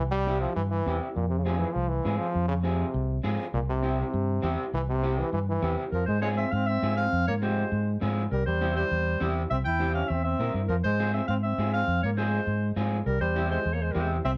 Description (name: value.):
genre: latin.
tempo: 201 BPM.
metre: 4/4.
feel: straight.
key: F harmonic minor.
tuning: A4 = 440 Hz.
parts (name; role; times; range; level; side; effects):
bright trombone; second line; 0.0-14.3 s; Bb2 to E4; -34 LUFS; equal; none.
fingered electric bass; bass; 0.0-14.4 s; C2 to Bb2; -30 LUFS; equal; none.
electric guitar at the edge of break-up; accompaniment; 0.3-14.2 s; C4 to Bb4; -36 LUFS; equal; none.
clear clarinet; melody; 5.9-14.3 s; Bb4 to G5; -33 LUFS; equal; none.
room: moderate studio reverb, RT60 0.8 s.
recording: none.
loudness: -27 LUFS.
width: mono.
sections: 0.0-5.9 A section; 5.9-14.4 B section.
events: trombone solo 0.0-5.9.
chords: 0.0 C; 1.2 Fm; 3.5 C; 5.9 Fm; 8.3 C; 10.7 Fm; 13.1 C.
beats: 0.27 0.56 0.86 | 1.16 1.46 1.75 2.05 | 2.35 2.65 2.95 3.25 | 3.54 3.84 4.14 4.44 | 4.74 5.03 5.33 5.63 | 5.93 6.23 6.52 6.82 | 7.12 7.42 7.72 8.01 | 8.31 8.61 8.91 9.20 | 9.50 9.80 10.10 10.39 | 10.69 10.99 11.28 11.58 | 11.88 12.17 12.47 12.77 | 13.06 13.36 13.66 13.95 | 14.25.